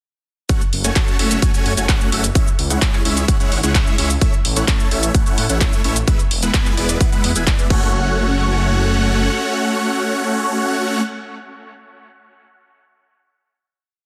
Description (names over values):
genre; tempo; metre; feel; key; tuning
EDM, festival progressive house; 129 BPM; 4/4; straight; F# minor; A4 = 441 Hz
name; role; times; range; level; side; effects
big supersaw lead; riff; 0.5-11.0 s; G#3 to A5; -22 LUFS; equal; phaser, sidechain pumping, dub echo
big-room dance drum kit; drums; 0.5-7.8 s; crash cymbal, handclaps, hi-hat, shaker; -24 LUFS; equal; none
electronic kick drum; drums; 0.5-7.8 s; none; -19 LUFS; equal; none
detuned saw bass; bass; 0.7-9.3 s; E1 to A2; -22 LUFS; equal; chorus, sidechain pumping
room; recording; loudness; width
light reverb, digital ambience; dense, heavily limited modern master; -17 LUFS; mono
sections
0.5-7.9 drop; 7.9-11.7 final hit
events
drop 0.5-7.9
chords
0.5 F#m; 2.4 C#m; 4.2 A; 6.1 E; 7.7 F#m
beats
| 0.49 0.96 1.43 1.89 | 2.35 2.82 3.29 3.75 | 4.22 4.68 5.15 5.61 | 6.08 6.54 7.01 7.47 | 7.94 8.40 8.87 9.33 | 9.80 10.26 10.73